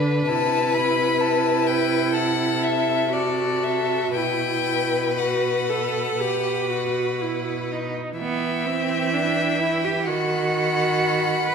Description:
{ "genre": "classical, slow romantic movement for string quartet", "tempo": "57-67 BPM", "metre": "4/4", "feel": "rubato", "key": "E minor", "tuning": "A4 = 440 Hz", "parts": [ { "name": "clear violin", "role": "second line", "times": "0.0-11.5 s", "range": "A4 to F#5", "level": "-25 LUFS", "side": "left 4 dB", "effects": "none" }, { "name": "rich viola", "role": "accompaniment", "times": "0.0-11.5 s", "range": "D#3 to A4", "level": "-25 LUFS", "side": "right 4 dB", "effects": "none" }, { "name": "rich cello", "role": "bass", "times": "0.0-11.5 s", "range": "B2 to B4", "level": "-26 LUFS", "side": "right 4 dB", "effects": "none" }, { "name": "clear violin", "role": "melody", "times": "0.3-11.5 s", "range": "D5 to B5", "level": "-27 LUFS", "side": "left 7 dB", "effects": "none" } ], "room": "wet concert hall reverb, RT60 1.8 s", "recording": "minimal, uncompressed stereo recording", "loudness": "-20 LUFS", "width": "side -6 dB against mid", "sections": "0.0-8.2 A section; 8.2-11.5 B section", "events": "none", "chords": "0.3 Am/C; 4.1 Bsus4; 6.2 B; 8.2 Em; 10.1 B/D#", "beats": "| 0.27 1.21 2.14 3.12 | 4.15 5.18 6.19 7.20 | 8.19 9.13 10.06 10.99" }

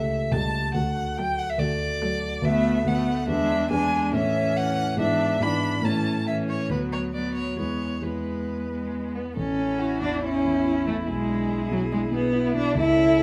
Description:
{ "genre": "quick classical-period movement for piano quartet", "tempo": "141 BPM", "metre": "4/4", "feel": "rubato", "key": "A major", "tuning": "A4 = 440 Hz", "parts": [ { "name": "rich violin", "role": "melody", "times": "0.0-13.2 s", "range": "E4 to B5", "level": "-31 LUFS", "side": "equal", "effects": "none" }, { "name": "dark concert grand piano", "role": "accompaniment", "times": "0.0-13.2 s", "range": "A1 to D5", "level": "-30 LUFS", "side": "equal", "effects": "none" }, { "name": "rich viola", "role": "accompaniment", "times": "0.3-13.2 s", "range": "A3 to A4", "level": "-32 LUFS", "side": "equal", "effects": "none" }, { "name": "rich cello", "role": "second line", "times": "0.4-13.2 s", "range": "E3 to E4", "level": "-29 LUFS", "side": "equal", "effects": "none" } ], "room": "moderate stone room reverb, RT60 1.1 s", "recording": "none", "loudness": "-25 LUFS", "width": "mono", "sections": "0.0-9.4 A section; 9.4-13.2 B section", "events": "none", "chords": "0.0 A7/C#; 0.8 D; 2.4 Bm7/D; 3.3 E7; 4.1 A; 5.0 E7/G#; 5.8 A; 6.7 Bm/D; 7.6 E; 9.4 A; 11.1 E7/B", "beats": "0.34 | 0.76 1.18 1.60 2.02 | 2.45 2.87 3.30 3.72 | 4.14 4.57 4.99 5.42 | 5.85 6.28 6.71 7.14 | 7.58 8.03 8.47 8.92 | 9.36 9.79 10.22 10.65 | 11.08 11.50 11.92 12.34 | 12.76 13.19" }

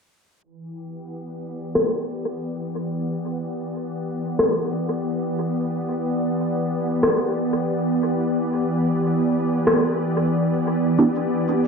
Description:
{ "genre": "ambient dub", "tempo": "91 BPM", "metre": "4/4", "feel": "straight", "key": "E minor", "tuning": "A4 = 440 Hz", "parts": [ { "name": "soft additive organ-like pad", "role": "sustained chords", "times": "0.4-11.7 s", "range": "E3 to D5", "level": "-22 LUFS", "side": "equal", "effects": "ensemble chorus, built-in reverb" }, { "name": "electronic rim click and cabasa", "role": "drums", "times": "1.8-11.7 s", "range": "none", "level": "-22 LUFS", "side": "left 1 dB", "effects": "overdrive, dub echo" }, { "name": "filtered dub chord stab", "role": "stabs", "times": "11.0-11.2 s", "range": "B3 to G4", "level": "-20 LUFS", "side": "right 3 dB", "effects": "phaser, cassette tape, dub echo" } ], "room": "wet echo chamber reverb, RT60 1.8 s", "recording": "dark, warm production, low-pass filter", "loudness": "-20 LUFS", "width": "side -5 dB against mid", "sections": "0.4-11.7 A section", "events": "fade-in on ambient pad 0.4-11.7; filter sweep 0.4-11.7", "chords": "0.4 Em7", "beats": "| 0.44 1.10 1.75 2.41 | 3.07 3.73 4.39 5.05 | 5.71 6.37 7.03 7.69 | 8.35 9.01 9.67 10.33 | 10.99 11.64" }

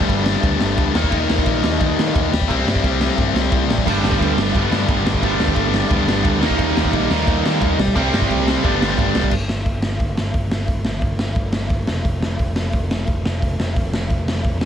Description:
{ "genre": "punk rock", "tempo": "176 BPM", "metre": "4/4", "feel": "straight", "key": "G mixolydian", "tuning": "A4 = 443 Hz", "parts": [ { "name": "biting overdriven guitar", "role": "riff", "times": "0.0-9.3 s", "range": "G2 to Eb4", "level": "-22 LUFS", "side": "right 1 dB", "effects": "none" }, { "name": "tight distorted guitar", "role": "riff", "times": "0.0-9.3 s", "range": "G2 to E4", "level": "-22 LUFS", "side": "left 14 dB", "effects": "distortion" }, { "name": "overdriven picked electric bass", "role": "bass", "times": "0.0-14.7 s", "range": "F1 to Eb3", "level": "-23 LUFS", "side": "equal", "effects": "none" }, { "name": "raw garage drum kit", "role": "drums", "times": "0.0-14.7 s", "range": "crash cymbal, hi-hat, kick drum, ride cymbal, snare drum", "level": "-20 LUFS", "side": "equal", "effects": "none" }, { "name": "distorted electric guitar", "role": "riff", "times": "3.9-9.3 s", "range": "G2 to E4", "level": "-22 LUFS", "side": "right 11 dB", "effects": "distortion" } ], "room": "light reverb", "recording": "none", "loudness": "-16 LUFS", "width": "side -9 dB against mid", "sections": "0.0-9.3 A section; 9.3-14.7 B section", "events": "none", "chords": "0.0 G; 1.0 Eb; 2.5 C; 3.9 G; 6.4 Eb; 8.0 C; 8.6 G; 9.3 N.C.", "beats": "0.10 0.44 0.78 | 1.12 1.46 1.81 2.15 | 2.49 2.83 3.18 3.52 | 3.86 4.20 4.55 4.89 | 5.23 5.57 5.91 6.25 | 6.60 6.94 7.28 7.62 | 7.96 8.30 8.64 8.98 | 9.33 9.67 10.01 10.35 | 10.69 11.04 11.38 11.72 | 12.06 12.40 12.75 13.09 | 13.43 13.77 14.11 14.45" }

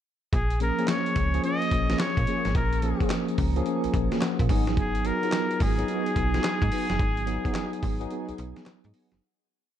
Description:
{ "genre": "R&B, new jack swing", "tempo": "108 BPM", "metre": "4/4", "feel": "swing 65% on 16ths", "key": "G# dorian", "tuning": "A4 = 440 Hz", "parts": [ { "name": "trumpet with straight mute", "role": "melody", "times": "0.3-8.7 s", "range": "G#4 to D#5", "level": "-30 LUFS", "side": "equal", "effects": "shimmer reverb" }, { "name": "slap-like FM bass", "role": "bass", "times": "0.3-9.2 s", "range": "F#1 to A#2", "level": "-28 LUFS", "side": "equal", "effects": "none" }, { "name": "dusty soul sampler-style drum kit", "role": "drums", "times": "0.3-9.2 s", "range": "handclaps, hi-hat, kick drum, snare drum", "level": "-28 LUFS", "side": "equal", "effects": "none" }, { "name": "tine electric piano", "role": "accompaniment", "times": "0.6-9.2 s", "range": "E#3 to A#5", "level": "-29 LUFS", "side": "right 1 dB", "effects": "medium stereo tremolo, shimmer reverb" }, { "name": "mellow synth brass", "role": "stabs", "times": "0.8-9.1 s", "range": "A#3 to G#4", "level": "-35 LUFS", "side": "left 1 dB", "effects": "chorus, shimmer reverb" } ], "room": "light reverb, digital ambience", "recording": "dark, warm production", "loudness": "-23 LUFS", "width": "side -10 dB against mid", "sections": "0.3-9.2 verse", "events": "tine electric piano fill 3.1-4.8; fade-out 7.0-9.2; break 8.1-9.2", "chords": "0.3 A#m7; 4.5 G#m7", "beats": "| 0.33 0.88 1.44 1.99 | 2.55 3.10 3.66 4.21 | 4.77 5.33 5.88 6.44 | 6.99 7.55 8.10 8.66" }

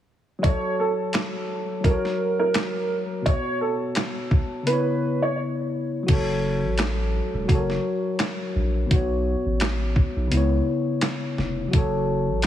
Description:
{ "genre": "hip hop, boom-bap hip-hop", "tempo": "85 BPM", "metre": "4/4", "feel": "swing 54% on 16ths", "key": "F# minor", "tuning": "A4 = 440 Hz", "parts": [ { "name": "dark upright piano", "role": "melody", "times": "0.4-5.4 s", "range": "A4 to C#5", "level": "-26 LUFS", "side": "right 3 dB", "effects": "high-pass filter, low-pass filter, slapback echo" }, { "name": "tine electric piano", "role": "accompaniment", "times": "0.4-12.5 s", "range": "B2 to C#5", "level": "-26 LUFS", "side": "left 2 dB", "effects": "cassette tape, high-pass filter, low-pass filter" }, { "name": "boom bap sampler-style drum kit", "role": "drums", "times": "0.4-12.5 s", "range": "crash cymbal, handclaps, hi-hat, kick drum, snare drum", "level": "-24 LUFS", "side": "equal", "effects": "none" }, { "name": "soft dub sub bass", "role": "bass", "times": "6.1-12.5 s", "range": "E1 to C#2", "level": "-25 LUFS", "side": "equal", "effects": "none" } ], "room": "light reverb", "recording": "heavily compressed radio sound, multiband compression", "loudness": "-21 LUFS", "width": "side -11 dB against mid", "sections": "0.4-6.1 A section; 6.1-12.5 B section", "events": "break 5.4-6.1", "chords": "0.4 F#m; 1.8 F#; 3.3 Bsus2; 4.7 C#m7; 6.1 F#m; 7.5 F#; 8.9 Bsus2; 10.3 C#m7; 11.7 F#m", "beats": "| 0.44 1.14 1.85 2.55 | 3.26 3.97 4.67 5.38 | 6.08 6.79 7.50 8.20 | 8.91 9.61 10.32 11.03 | 11.73 12.44" }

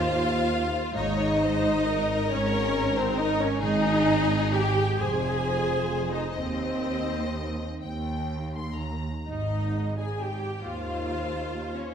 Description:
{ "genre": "classical, slow romantic movement for string orchestra", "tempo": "41-46 BPM (dotted quarters)", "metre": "6/8", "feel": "rubato", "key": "Ab major", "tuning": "A4 = 440 Hz", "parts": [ { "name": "rich studio violin section", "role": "melody", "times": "0.0-11.9 s", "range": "Ab4 to C6", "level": "-33 LUFS", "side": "left 6 dB", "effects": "none" }, { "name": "warm studio violin section", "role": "second line", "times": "0.0-11.9 s", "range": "C5 to Ab5", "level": "-32 LUFS", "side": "left 2 dB", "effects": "none" }, { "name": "clear studio viola section", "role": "accompaniment", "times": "0.0-11.9 s", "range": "C4 to Ab4", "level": "-28 LUFS", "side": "equal", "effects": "none" }, { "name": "rich studio cello section", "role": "bass", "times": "0.0-11.7 s", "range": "Eb2 to Ab2", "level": "-32 LUFS", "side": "right 2 dB", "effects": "none" }, { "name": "rich studio double bass section", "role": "bass", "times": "0.0-11.7 s", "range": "F1 to Eb2", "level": "-31 LUFS", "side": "right 3 dB", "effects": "none" } ], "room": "wet scoring stage reverb, RT60 1.8 s", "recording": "none", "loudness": "-24 LUFS", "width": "side -8 dB against mid", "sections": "0.0-11.9 A section", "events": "none", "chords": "0.0 Ab (rootless); 1.0 Ab5; 5.0 Fm; 6.4 Cm/Eb; 7.8 Eb; 9.3 Ab", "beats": "| 0.96 2.31 | 3.62 4.98 | 6.36 7.82 | 9.27 10.64" }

